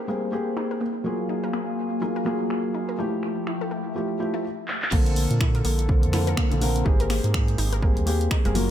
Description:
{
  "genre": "deep house",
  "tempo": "124 BPM",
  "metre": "4/4",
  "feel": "swing 59% on 16ths",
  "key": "Bb lydian",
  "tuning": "A4 = 440 Hz",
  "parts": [
    { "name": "warbly tape-like pad", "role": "sustained chords", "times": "0.0-4.9 s", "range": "F3 to Ab5", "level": "-32 LUFS", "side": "left 1 dB", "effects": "chorus, built-in reverb, sidechain pumping" },
    { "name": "felt-muted upright piano", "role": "stabs", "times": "0.0-8.7 s", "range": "D3 to Bb4", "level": "-27 LUFS", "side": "left 1 dB", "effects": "sidechain pumping, analog delay" },
    { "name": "analog pluck", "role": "arpeggios", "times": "0.1-8.6 s", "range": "A3 to Bb4", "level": "-34 LUFS", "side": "left 2 dB", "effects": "chorus, sidechain pumping, diffuse ambient delay" },
    { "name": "punchy analog drum machine", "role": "drums", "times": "0.6-8.7 s", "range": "crash cymbal, finger snaps, handclaps, hi-hat", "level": "-31 LUFS", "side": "equal", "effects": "low-pass filter on hats, low-pass filter on snare, low-pass filter on cymbals, low-pass filter on room" },
    { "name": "round analog bass", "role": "bass", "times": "4.9-8.7 s", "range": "Gb1 to Bb2", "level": "-24 LUFS", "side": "right 1 dB", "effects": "sidechain pumping" },
    { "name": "electronic kick drum", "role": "drums", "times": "4.9-8.4 s", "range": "none", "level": "-22 LUFS", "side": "right 1 dB", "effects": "none" }
  ],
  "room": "light reverb, digital ambience",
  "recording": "none",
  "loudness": "-22 LUFS",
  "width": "side -10 dB against mid",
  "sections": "0.0-4.9 A section; 4.9-8.7 B section",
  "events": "filter sweep on synth arpeggio sound 0.0-4.9; drum fill 4.7; drop 4.9-8.7",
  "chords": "0.0 Abmaj9; 0.8 Gbmaj9; 3.0 Fmaj9; 4.9 Bbmaj9; 6.9 Abmaj9"
}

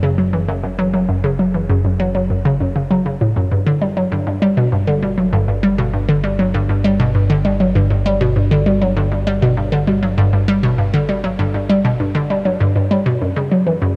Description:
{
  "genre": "ambient, sequencer-driven space music",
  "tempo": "99 BPM",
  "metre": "4/4",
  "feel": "straight",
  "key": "unclear",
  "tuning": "A4 = 441 Hz",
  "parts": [
    { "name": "hollow square pluck", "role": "riff", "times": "0.0-14.0 s", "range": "F#2 to G3", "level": "-17 LUFS", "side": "equal", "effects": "chorus, tape echo" },
    { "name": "analog drone", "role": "bass", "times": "0.0-14.0 s", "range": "F#1 to G1", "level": "-26 LUFS", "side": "equal", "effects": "chorus" }
  ],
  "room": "light reverb",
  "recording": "none",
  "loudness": "-16 LUFS",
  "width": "mono",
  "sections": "0.0-14.0 A section",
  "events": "none",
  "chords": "none"
}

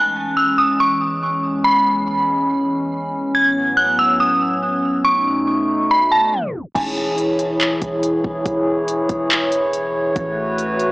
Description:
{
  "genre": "hip hop, atmospheric cloud-rap",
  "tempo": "141 BPM",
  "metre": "4/4",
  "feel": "half-time",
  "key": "unclear",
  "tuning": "A4 = 437 Hz",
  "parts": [
    { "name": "dark detuned synth bell", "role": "melody", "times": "0.0-6.7 s", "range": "G#5 to G#6", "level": "-16 LUFS", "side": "equal", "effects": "chorus, tremolo, tape echo" },
    { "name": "hollow soft pad", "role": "sustained chords", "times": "0.0-10.9 s", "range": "E2 to C#5", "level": "-20 LUFS", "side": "equal", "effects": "chorus, sidechain pumping" },
    { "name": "long sustained 808-style bass", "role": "bass", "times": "6.8-10.9 s", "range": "E1 to A1", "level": "-35 LUFS", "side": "equal", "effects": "none" },
    { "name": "smooth R&B drum kit", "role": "drums", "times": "6.8-10.9 s", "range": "crash cymbal, handclaps, hi-hat, kick drum", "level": "-22 LUFS", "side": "equal", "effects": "overdrive" }
  ],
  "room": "light reverb",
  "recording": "blown-out, overdriven recording, overdrive, tape stop, small speaker sound",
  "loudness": "-16 LUFS",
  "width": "side -22 dB against mid",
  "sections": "0.0-6.8 A section; 6.8-10.9 B section",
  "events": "tape stop 6.3-6.8",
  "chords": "0.0 E6; 3.4 A69; 5.1 B9; 6.8 E6; 10.2 A69"
}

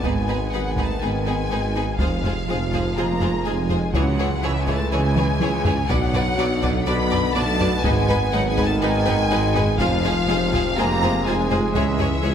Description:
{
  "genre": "cinematic, hybrid orchestral and electronic film score",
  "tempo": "123 BPM",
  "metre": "4/4",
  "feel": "straight",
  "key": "unclear",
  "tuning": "A4 = 440 Hz",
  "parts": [
    { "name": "warm symphonic violin section", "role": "melody", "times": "0.0-12.3 s", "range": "E5 to B5", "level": "-27 LUFS", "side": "left 2 dB", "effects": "none" },
    { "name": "clear symphonic violin section", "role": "second line", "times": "0.0-12.3 s", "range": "G#4 to D5", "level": "-29 LUFS", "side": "left 2 dB", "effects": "none" },
    { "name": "rich symphonic viola section", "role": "accompaniment", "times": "0.0-12.3 s", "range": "E3 to G#4", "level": "-29 LUFS", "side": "right 1 dB", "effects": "none" },
    { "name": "warm French horn section", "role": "sustained chords", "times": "0.0-12.3 s", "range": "E3 to B3", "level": "-28 LUFS", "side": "left 4 dB", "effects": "none" },
    { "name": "warm trombone section", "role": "sustained chords", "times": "0.0-12.3 s", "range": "C3 to B3", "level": "-27 LUFS", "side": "right 2 dB", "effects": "none" },
    { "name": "clear symphonic double bass section", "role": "bass", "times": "0.0-12.3 s", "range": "F1 to C#2", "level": "-29 LUFS", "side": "right 2 dB", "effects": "none" },
    { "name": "dark tuba", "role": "bass", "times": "0.0-12.3 s", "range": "F1 to C#2", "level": "-28 LUFS", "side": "right 3 dB", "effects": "none" },
    { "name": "punchy sub bass", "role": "bass", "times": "0.0-12.3 s", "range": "F1 to C#2", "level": "-30 LUFS", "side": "left 1 dB", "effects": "none" },
    { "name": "rich symphonic cello section", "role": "bass", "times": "0.0-12.3 s", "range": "C#2 to C#3", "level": "-28 LUFS", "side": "right 2 dB", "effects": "none" },
    { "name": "taiko ensemble", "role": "drums", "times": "0.0-12.2 s", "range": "none", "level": "-27 LUFS", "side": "equal", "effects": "none" }
  ],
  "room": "wet scoring stage reverb, RT60 1.5 s",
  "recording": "none",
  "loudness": "-18 LUFS",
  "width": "side -8 dB against mid",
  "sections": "0.0-12.3 A section",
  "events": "drum fill 5.2-5.9",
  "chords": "0.0 G#m; 2.0 Fm; 3.9 C#m; 5.9 Bm; 7.8 G#m; 9.8 Fm; 11.7 C#m"
}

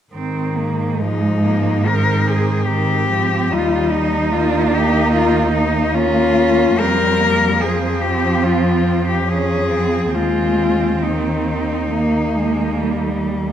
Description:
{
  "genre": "classical, lyrical piece for cello ensemble",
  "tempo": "72 BPM",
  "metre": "4/4",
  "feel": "uneven beats, rubato",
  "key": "Ab major",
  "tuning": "A4 = 440 Hz",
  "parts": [
    { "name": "rich cello", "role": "second line", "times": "0.1-13.5 s", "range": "Ab3 to Eb4", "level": "-22 LUFS", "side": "right 5 dB", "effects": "none" },
    { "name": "rich cello", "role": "accompaniment", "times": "0.1-13.5 s", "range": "Eb3 to Bb3", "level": "-21 LUFS", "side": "equal", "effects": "none" },
    { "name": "rich cello", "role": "bass", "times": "0.2-13.5 s", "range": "Eb2 to Ab2", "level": "-21 LUFS", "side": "right 2 dB", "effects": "none" },
    { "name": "clear cello", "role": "melody", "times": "1.0-13.3 s", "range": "Eb4 to Bb4", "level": "-19 LUFS", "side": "left 5 dB", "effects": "none" }
  ],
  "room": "moderate scoring stage reverb, RT60 1.6 s",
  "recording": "none",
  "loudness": "-15 LUFS",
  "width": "side -10 dB against mid",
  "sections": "0.1-13.5 A section",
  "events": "none",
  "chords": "0.1 Ab; 3.5 Eb9; 6.8 Fm; 10.1 Ab/Eb; 11.9 Eb"
}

